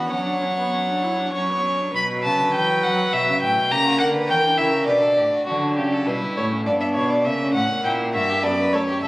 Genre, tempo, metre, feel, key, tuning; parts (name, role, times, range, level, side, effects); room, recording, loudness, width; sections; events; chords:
classical, baroque-style fugue for string quartet; 101 BPM; 3/4; straight; B minor, D major from 5.5 s; A4 = 439 Hz
rich violin; melody; 0.0-9.1 s; F#4 to C#6; -21 LUFS; equal
warm violin; second line; 0.0-9.1 s; C#4 to C#5; -25 LUFS; equal
rich viola; accompaniment; 0.0-8.8 s; F#3 to E4; -28 LUFS; equal
rich cello; bass; 0.0-9.1 s; C#2 to F#3; -26 LUFS; equal
moderate concert hall reverb, RT60 2.3 s; recorded on a phone in the room, club reverb, nothing above 10.7 kHz; -18 LUFS; side -20 dB against mid
0.0-1.9 A section; 1.9-5.5 B section; 5.5-9.1 C section
0.1 F#sus4; 1.3 F#5; 1.9 Bm; 3.1 C#m7b5; 3.7 A#dim7/C#; 4.9 Bm; 5.5 D; 6.7 Em7/G (rootless); 7.3 C#dim7; 8.4 D/F#